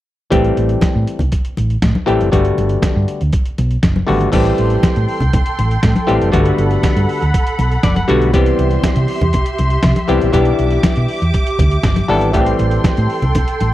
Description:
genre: disco.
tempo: 120 BPM.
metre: 4/4.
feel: straight.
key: A dorian.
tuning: A4 = 439 Hz.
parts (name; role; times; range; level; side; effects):
overdriven clav; accompaniment; 0.3-13.3 s; D3 to F#5; -16 LUFS; left 2 dB; phaser.
fingered electric bass; bass; 0.3-13.7 s; F#1 to C3; -16 LUFS; right 1 dB; none.
trip hop sampler-style drum kit; drums; 0.3-13.7 s; crash cymbal, hi-hat, kick drum, snare drum; -17 LUFS; right 1 dB; overdrive.
congas; percussion; 0.3-13.7 s; none; -22 LUFS; left 2 dB; none.
dark symphonic string section; sustained chords; 4.3-13.7 s; G4 to D6; -22 LUFS; right 2 dB; none.
room: digital ambience.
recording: dry, close 1970s-style studio recording.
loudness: -12 LUFS.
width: side -14 dB against mid.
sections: 0.3-4.3 A section; 4.3-13.7 B section.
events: clav fill 7.6-8.3.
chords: 0.3 Am7; 2.3 Gmaj9; 4.3 Am7; 6.3 Gmaj9; 8.3 Cmaj7; 10.3 Em7/B; 12.3 Am7.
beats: | 0.32 0.82 1.32 1.82 | 2.33 2.83 3.33 3.83 | 4.33 4.83 5.33 5.83 | 6.33 6.83 7.33 7.83 | 8.34 8.84 9.34 9.84 | 10.34 10.84 11.34 11.84 | 12.34 12.85 13.35.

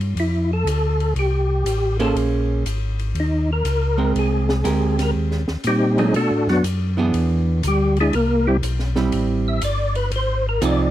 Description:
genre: soul jazz organ trio.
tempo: 120 BPM.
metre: 4/4.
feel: swing 68% on 8ths.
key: unclear.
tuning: A4 = 440 Hz.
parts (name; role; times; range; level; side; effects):
mellow tonewheel organ; bass; 0.0-10.9 s; G1 to B2; -21 LUFS; equal; chorus vibrato, slow rotary speaker.
open jazz drum kit; drums; 0.0-10.8 s; hi-hat, ride cymbal, snare drum; -32 LUFS; left 3 dB; none.
percussive tonewheel organ; melody; 0.2-10.9 s; F#3 to E5; -21 LUFS; left 1 dB; slow rotary speaker, chorus vibrato.
archtop guitar, miked and amplified; accompaniment; 2.0-10.9 s; E3 to C5; -21 LUFS; right 5 dB; none.
room: small room ambience.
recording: dry, close 1970s-style studio recording.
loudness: -18 LUFS.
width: side -13 dB against mid.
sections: 0.0-10.9 A section.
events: tonewheel organ solo 0.0-10.9.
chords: 0.2 F; 2.2 Bbm9; 3.2 Eb5; 4.2 Abmaj9; 6.1 Bm7; 7.1 E7; 8.1 Am7; 10.1 Fm7.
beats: | 0.17 0.67 1.17 1.66 | 2.16 2.66 3.16 3.66 | 4.15 4.65 5.15 5.65 | 6.15 6.64 7.14 7.64 | 8.13 8.63 9.13 9.62 | 10.12 10.62.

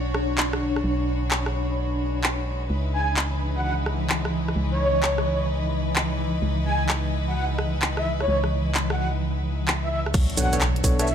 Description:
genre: UK garage, two-step garage.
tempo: 129 BPM.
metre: 4/4.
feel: swing 66% on 16ths.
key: unclear.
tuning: A4 = 440 Hz.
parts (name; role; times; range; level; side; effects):
clear studio violin section; sustained chords; 0.0-11.1 s; G#3 to C#5; -35 LUFS; left 2 dB; sidechain pumping, low-pass filter.
organ-like FM bass; bass; 0.0-11.1 s; B1 to C#2; -26 LUFS; equal; none.
granular cloud pad; texture; 0.0-11.1 s; E3 to B5; -29 LUFS; left 1 dB; built-in reverb, sidechain pumping.
garage drum kit; drums; 0.1-11.1 s; crash cymbal, handclaps, hi-hat, rim click, shaker; -26 LUFS; equal; small room ambience.
breathy flute-like synth lead; melody; 2.9-11.1 s; C#5 to G#5; -28 LUFS; right 1 dB; ensemble chorus, cassette tape, tape echo.
electronic kick drum; drums; 10.1-11.0 s; none; -22 LUFS; equal; small room ambience.
impact; sound effects; 10.1-11.1 s; none; -30 LUFS; equal; none.
overdriven tine electric piano; stabs; 10.4-11.1 s; B3 to C#5; -26 LUFS; left 1 dB; tape echo.
room: moderate lush hall reverb, RT60 1.8 s, digital ambience.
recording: none.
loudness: -22 LUFS.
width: side -8 dB against mid.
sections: 0.0-10.1 A section; 10.1-11.1 B section.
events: drop 10.1-11.1; impact 10.1-11.1.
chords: 0.0 Bmadd9; 2.7 C#m9; 10.1 Bm9.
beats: 0.38 | 0.84 1.31 1.77 2.24 | 2.70 3.17 3.63 4.10 | 4.56 5.03 5.49 5.96 | 6.42 6.89 7.35 7.82 | 8.28 8.75 9.21 9.68 | 10.14 10.61 11.07.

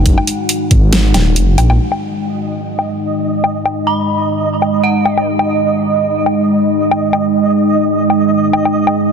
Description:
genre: deep dubstep.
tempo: 138 BPM.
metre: 4/4.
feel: swing 55% on 16ths, half-time.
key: unclear.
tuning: A4 = 437 Hz.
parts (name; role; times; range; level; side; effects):
deep dark ambient pad; sustained chords; 0.0-9.1 s; G#3 to F#5; -15 LUFS; right 1 dB; chorus, built-in reverb, vintage 12-bit sampler grit.
dark detuned saw bass; bass; 0.0-1.8 s; D#1 to A#1; -11 LUFS; equal; none.
dubstep drum kit; drums; 0.1-8.9 s; hi-hat, snare drum, woodblock; -19 LUFS; left 2 dB; low-pass filter on hats, low-pass filter on perc, low-pass filter on snare.
electronic kick drum; drums; 0.1-0.8 s; none; -11 LUFS; equal; none.
flickering grainy texture; texture; 2.5-9.1 s; D#5; -20 LUFS; right 3 dB; built-in reverb.
dark detuned synth bell; melody; 3.9-5.2 s; F#5 to B5; -21 LUFS; right 1 dB; chorus, phaser, dub echo.
room: moderate huge ambient reverb, RT60 6.5 s.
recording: dense, heavily limited modern master.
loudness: -11 LUFS.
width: side -6 dB against mid.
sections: 0.0-1.8 A section; 1.8-9.1 B section.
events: kick drops out 0.9-1.8.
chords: 0.0 G#5.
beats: | 0.06 0.49 0.93 1.36 | 1.79 2.23 2.66 3.10 | 3.53 3.97 4.40 4.84 | 5.27 5.71 6.14 6.58 | 7.01 7.45 7.88 8.32 | 8.75.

